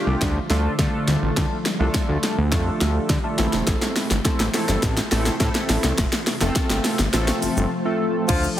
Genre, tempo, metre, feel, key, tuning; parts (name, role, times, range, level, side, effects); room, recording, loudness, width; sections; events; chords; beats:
dance-pop; 104 BPM; 4/4; straight; D minor; A4 = 440 Hz
chorused polysynth; accompaniment; 0.0-8.6 s; F3 to A4; -25 LUFS; equal; sidechain pumping, low-pass filter
ethereal airy pad; sustained chords; 0.0-8.6 s; C3 to G4; -29 LUFS; equal; ensemble chorus, built-in reverb, sidechain pumping, low-pass filter
fat analog bass; bass; 0.1-8.5 s; E1 to D3; -22 LUFS; equal; sidechain pumping
pop drum kit; drums; 0.2-8.6 s; crash cymbal, hi-hat, kick drum, shaker, snare drum; -22 LUFS; equal
warm horn section; melody; 8.3-8.6 s; F3 to F4; -23 LUFS; left 1 dB; sidechain pumping
light reverb; heavily compressed radio sound, multiband compression; -19 LUFS; side -12 dB against mid
0.0-8.3 A section
build-up 0.0-8.3; drum fill 0.0-7.7
0.0 Dm; 3.4 Am; 6.0 F
0.21 0.79 | 1.37 1.94 2.52 3.10 | 3.67 4.25 4.83 5.41 | 5.98 6.56 7.14 7.71 | 8.29